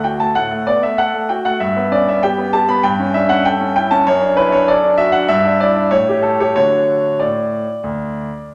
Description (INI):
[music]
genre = classical-period piano sonatina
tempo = 97 BPM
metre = 4/4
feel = straight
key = D major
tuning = A4 = 441 Hz
[part]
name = bright concert grand piano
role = solo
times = 0.0-8.5 s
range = D2 to B5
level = -16 LUFS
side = equal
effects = none
[sound]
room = wet recital hall reverb, RT60 1.6 s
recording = none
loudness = -16 LUFS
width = mono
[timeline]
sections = 0.0-8.5 A section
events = none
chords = 0.0 D; 1.6 G69; 2.8 A7/G; 4.1 D/F#; 5.3 Em7/G; 5.9 A7; 6.6 D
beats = 0.35 0.98 | 1.60 2.21 2.83 3.45 | 4.07 4.68 5.30 5.93 | 6.56 7.20 7.83